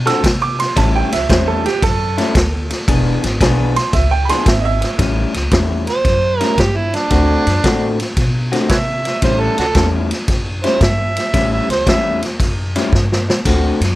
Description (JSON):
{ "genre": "electric blues shuffle", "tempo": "113 BPM", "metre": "4/4", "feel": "swing 67% on 8ths", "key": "A mixolydian", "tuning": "A4 = 442 Hz", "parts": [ { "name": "upright bass", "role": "bass", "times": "0.0-13.9 s", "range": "E1 to C3", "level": "-19 LUFS", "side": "equal", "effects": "none" }, { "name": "bright upright piano", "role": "second line", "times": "0.1-5.0 s", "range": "G4 to E6", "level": "-19 LUFS", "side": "right 6 dB", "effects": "none" }, { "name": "electric guitar through a small old amp", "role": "riff", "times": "0.1-13.9 s", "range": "A2 to A4", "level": "-20 LUFS", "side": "left 3 dB", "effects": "none" }, { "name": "vintage drum kit", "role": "drums", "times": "0.1-13.9 s", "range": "kick drum, ride cymbal, snare drum, splash cymbal", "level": "-17 LUFS", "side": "equal", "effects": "none" }, { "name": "overdriven harmonica", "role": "melody", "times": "5.9-12.2 s", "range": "D4 to E5", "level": "-18 LUFS", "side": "right 2 dB", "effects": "none" } ], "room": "little or no reverb", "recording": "none", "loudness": "-13 LUFS", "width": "side -16 dB against mid", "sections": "0.0-5.0 A section; 5.0-14.0 B section", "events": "upright piano solo 0.0-5.0; drum fill 12.9-13.5", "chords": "0.0 D7; 0.8 A7; 2.9 E7; 5.0 A7; 7.1 D7; 9.2 A7" }